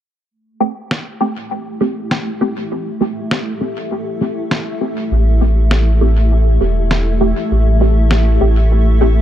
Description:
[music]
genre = ambient dub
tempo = 100 BPM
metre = 4/4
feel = straight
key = A minor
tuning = A4 = 439 Hz
[part]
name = granular cloud pad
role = sustained chords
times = 1.1-9.2 s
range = A3 to E5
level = -21 LUFS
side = left 1 dB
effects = built-in reverb
[part]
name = filtered dub chord stab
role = stabs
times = 0.6-9.2 s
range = A3 to G4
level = -19 LUFS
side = right 1 dB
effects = phaser, ensemble chorus, dub echo
[part]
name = electronic snare drum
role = drums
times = 0.9-8.2 s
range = none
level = -21 LUFS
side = equal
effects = small room ambience, dub echo
[part]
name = warm sub bass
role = bass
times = 5.1-9.2 s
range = E1 to A1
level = -12 LUFS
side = equal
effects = none
[sound]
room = little or no reverb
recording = dark, warm production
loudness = -13 LUFS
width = side -11 dB against mid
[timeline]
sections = 0.3-9.2 A section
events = filter sweep on ambient pad 0.3-9.2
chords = 0.3 Am7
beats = | 0.31 0.91 1.51 2.11 | 2.71 3.31 3.91 4.51 | 5.11 5.71 6.31 6.91 | 7.51 8.11 8.71

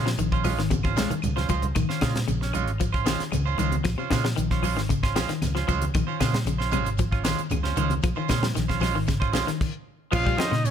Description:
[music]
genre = afrobeat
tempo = 115 BPM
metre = 4/4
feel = straight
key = Bb minor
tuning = A4 = 440 Hz
[part]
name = electric guitar at the edge of break-up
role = arpeggios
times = 0.0-10.7 s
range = C3 to Ab3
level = -30 LUFS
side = left 8 dB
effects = none
[part]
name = clean electric guitar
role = stabs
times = 0.0-10.5 s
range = Ab3 to C5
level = -30 LUFS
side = right 10 dB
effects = none
[part]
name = hollow-body short-scale fingered electric bass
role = bass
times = 0.0-10.7 s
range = Ab1 to Bb2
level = -27 LUFS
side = equal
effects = none
[part]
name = tight funk drum kit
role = drums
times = 0.1-10.7 s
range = crash cymbal, hi-hat, kick drum, snare drum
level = -28 LUFS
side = equal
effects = none
[part]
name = shekere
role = percussion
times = 0.1-10.7 s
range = none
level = -37 LUFS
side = right 8 dB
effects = none
[part]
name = congas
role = percussion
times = 0.2-10.7 s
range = none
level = -32 LUFS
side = right 1 dB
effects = none
[part]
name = claves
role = percussion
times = 0.4-10.5 s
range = none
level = -40 LUFS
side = left 4 dB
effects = none
[part]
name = breathy trumpet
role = melody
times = 10.1-10.7 s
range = Db5 to F5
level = -27 LUFS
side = left 3 dB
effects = none
[part]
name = edgy alto saxophone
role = second line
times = 10.1-10.7 s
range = Db4 to F4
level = -32 LUFS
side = right 2 dB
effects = none
[sound]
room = light reverb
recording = none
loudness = -22 LUFS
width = side -8 dB against mid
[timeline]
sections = 0.0-10.1 A section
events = drum fill 0.7-1.8; stop 9.6-10.1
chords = 0.0 Bbm9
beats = 0.18 0.71 1.23 | 1.76 2.28 2.81 3.33 | 3.85 4.37 4.90 5.42 | 5.94 6.46 6.99 7.51 | 8.03 8.56 9.08 9.60 | 10.12 10.65

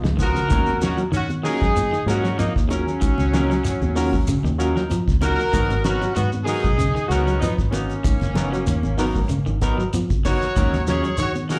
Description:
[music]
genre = afrobeat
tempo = 96 BPM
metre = 4/4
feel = swing 53% on 16ths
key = Eb minor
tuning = A4 = 440 Hz
[part]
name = reed electric piano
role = accompaniment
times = 0.0-11.6 s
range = Bb3 to Db5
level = -31 LUFS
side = equal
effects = fast tremolo, slapback echo
[part]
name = electric guitar at the edge of break-up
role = arpeggios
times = 0.0-11.6 s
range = Bb2 to Ab3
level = -30 LUFS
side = equal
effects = slapback echo
[part]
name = fingered electric bass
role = bass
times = 0.0-11.5 s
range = Gb1 to Eb3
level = -26 LUFS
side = equal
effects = none
[part]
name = congas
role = percussion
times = 0.0-11.6 s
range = none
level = -34 LUFS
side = equal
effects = slapback echo
[part]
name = shekere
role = percussion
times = 0.0-11.6 s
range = none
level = -31 LUFS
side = equal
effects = none
[part]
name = cloth-damped thuddy drum kit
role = drums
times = 0.1-11.6 s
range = hi-hat, kick drum, snare drum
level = -27 LUFS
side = equal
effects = none
[part]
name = bright horn section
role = melody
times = 0.2-11.6 s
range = Db4 to Db5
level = -28 LUFS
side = equal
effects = slapback echo
[part]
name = raspy tenor saxophone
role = second line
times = 0.2-11.6 s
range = Gb3 to Ab4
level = -32 LUFS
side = equal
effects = slapback echo
[part]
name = semi-hollow electric guitar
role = stabs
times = 0.2-11.6 s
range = F3 to Bb4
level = -31 LUFS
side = equal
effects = slapback echo
[sound]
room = moderate club reverb, RT60 0.6 s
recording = live gig heard through the venue's PA, club reverb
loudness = -21 LUFS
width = mono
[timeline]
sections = 0.5-11.6 A section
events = none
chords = 0.0 Db9; 0.5 Ebm7; 5.5 Abm9; 10.6 Ebm7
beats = | 0.50 1.13 1.76 2.39 | 3.02 3.64 4.27 4.90 | 5.53 6.16 6.79 7.42 | 8.04 8.67 9.30 9.93 | 10.55 11.18

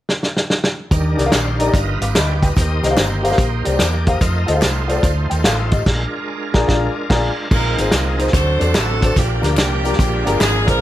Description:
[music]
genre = uptempo gospel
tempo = 145 BPM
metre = 4/4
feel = swing 65% on 8ths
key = unclear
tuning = A4 = 440 Hz
[part]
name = warm soul drum kit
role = drums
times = 0.1-10.7 s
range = crash cymbal, hi-hat, kick drum, snare drum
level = -18 LUFS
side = equal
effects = none
[part]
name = warm upright piano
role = accompaniment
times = 0.9-10.8 s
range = G2 to D6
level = -21 LUFS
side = left 2 dB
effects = none
[part]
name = bright tonewheel organ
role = sustained chords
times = 0.9-10.8 s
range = F3 to G5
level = -24 LUFS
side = right 2 dB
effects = slow rotary speaker, overdrive, chorus vibrato
[part]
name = hollow-body short-scale fingered electric bass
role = bass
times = 0.9-10.8 s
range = G1 to F2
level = -20 LUFS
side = equal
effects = none
[part]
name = tambourine and handclaps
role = percussion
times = 0.9-10.7 s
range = none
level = -28 LUFS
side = left 1 dB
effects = none
[part]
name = bright saxophone section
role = melody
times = 7.5-10.8 s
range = C4 to C5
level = -21 LUFS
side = right 1 dB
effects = none
[sound]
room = light reverb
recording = none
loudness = -14 LUFS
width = side -14 dB against mid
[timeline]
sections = 0.9-7.5 A section; 7.5-10.8 B section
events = drum fill 0.1-0.9; band accent 5.9-7.5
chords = 0.0 N.C.; 0.9 Ebmaj7; 1.7 G7b13; 2.6 Cm7; 4.2 F7; 5.9 Bb7; 7.5 Bb9sus4; 8.3 D7; 9.2 Gm7/Bb; 10.0 Bb7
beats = 0.09 0.50 | 0.91 1.32 1.74 2.15 | 2.56 2.97 3.38 3.80 | 4.21 4.62 5.04 5.45 | 5.86 6.27 6.69 7.10 | 7.51 7.93 8.34 8.75 | 9.16 9.58 9.99 10.40

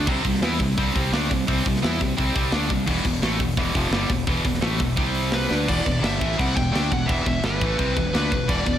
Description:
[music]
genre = heavy metal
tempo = 171 BPM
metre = 4/4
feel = straight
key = E minor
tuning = A4 = 440 Hz
[part]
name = high-gain distorted guitar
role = riff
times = 0.0-8.8 s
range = E2 to E4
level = -24 LUFS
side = equal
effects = distortion
[part]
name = fuzz fingered electric bass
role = bass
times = 0.0-8.8 s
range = E1 to E2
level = -26 LUFS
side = equal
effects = overdrive
[part]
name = tight metal drum kit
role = drums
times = 0.1-8.8 s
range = crash cymbal, hi-hat, kick drum, snare drum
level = -25 LUFS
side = equal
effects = none
[part]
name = high-gain lead guitar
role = melody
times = 5.3-8.8 s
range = B4 to G5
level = -27 LUFS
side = equal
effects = distortion
[sound]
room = moderate lush hall reverb, RT60 1.8 s, small room ambience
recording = big arena sound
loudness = -20 LUFS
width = side -10 dB against mid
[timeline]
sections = 0.0-5.7 A section; 5.7-8.8 B section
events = drum fill 5.5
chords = 0.1 C5; 2.9 Em; 5.0 C5; 5.5 Bm7/D; 5.7 Em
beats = | 0.08 0.43 0.78 1.13 | 1.48 1.83 2.18 2.53 | 2.88 3.23 3.58 3.93 | 4.28 4.63 4.98 5.33 | 5.68 6.03 6.38 6.73 | 7.08 7.43 7.79 8.14 | 8.49

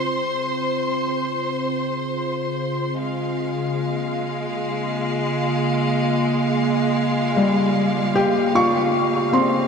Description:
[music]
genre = ambient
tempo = 76 BPM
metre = 3/4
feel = straight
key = Db lydian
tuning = A4 = 442 Hz
[part]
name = warbly tape-like pad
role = sustained chords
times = 0.0-9.7 s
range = Db3 to F4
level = -23 LUFS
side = right 1 dB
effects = chorus, built-in reverb, shimmer reverb
[part]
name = felt-muted upright piano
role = arpeggios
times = 0.0-9.7 s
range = G3 to Db6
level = -18 LUFS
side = left 1 dB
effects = diffuse ambient delay, shimmer reverb
[part]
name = warm studio violin section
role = texture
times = 0.0-9.7 s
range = Ab3 to C6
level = -24 LUFS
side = left 1 dB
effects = shimmer reverb
[sound]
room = wet cathedral reverb, RT60 7.3 s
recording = none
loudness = -19 LUFS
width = side -6 dB against mid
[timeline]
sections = 0.0-9.7 A section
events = fade-in on ambient pad 0.0-9.7; fade-in on felt piano 0.0-9.7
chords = 0.0 Dbmaj7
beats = | 0.66 1.45 2.23 | 3.02 3.81 4.60 | 5.39 6.18 6.97 | 7.76 8.55 9.34

